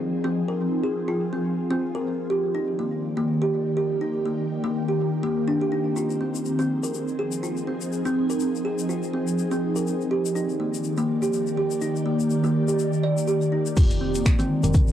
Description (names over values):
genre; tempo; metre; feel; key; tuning
afro house; 123 BPM; 4/4; swing 56% on 16ths; F dorian; A4 = 438 Hz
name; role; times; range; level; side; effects
ethereal airy pad; sustained chords; 0.0-14.9 s; Eb3 to D5; -26 LUFS; equal; ensemble chorus, built-in reverb, phaser, sidechain pumping
kalimba; arpeggios; 0.2-14.7 s; Bb3 to D5; -26 LUFS; right 1 dB; sidechain pumping, low-pass filter, tape echo
tube shaker; percussion; 6.0-14.9 s; none; -38 LUFS; left 11 dB; none
woody FM bass; bass; 13.8-14.9 s; F1; -28 LUFS; equal; sidechain pumping
afro-pop drum kit; drums; 13.8-14.9 s; crash cymbal, finger snaps, hi-hat, toms; -31 LUFS; equal; low-pass filter on snare, cassette tape, low-pass filter on hats, low-pass filter on toms, low-pass filter on cymbals
electronic kick drum; drums; 13.8-14.9 s; none; -18 LUFS; equal; cassette tape
room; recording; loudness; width
wet booth ambience, RT60 0.2 s; home recording on cassette; -22 LUFS; side -10 dB against mid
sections
0.0-13.8 A section; 13.8-14.9 B section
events
filter sweep on drum 0.0-13.8; drop 13.8-14.9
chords
0.0 Fm; 2.1 Ebmaj7; 6.0 Fm7; 9.9 Ebmaj7; 13.8 Fm7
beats
| 0.11 0.60 1.09 1.57 | 2.06 2.55 3.04 3.52 | 4.01 4.50 4.99 5.48 | 5.96 6.45 6.94 7.43 | 7.92 8.40 8.89 9.38 | 9.87 10.36 10.84 11.33 | 11.82 12.31 12.79 13.28 | 13.77 14.26 14.74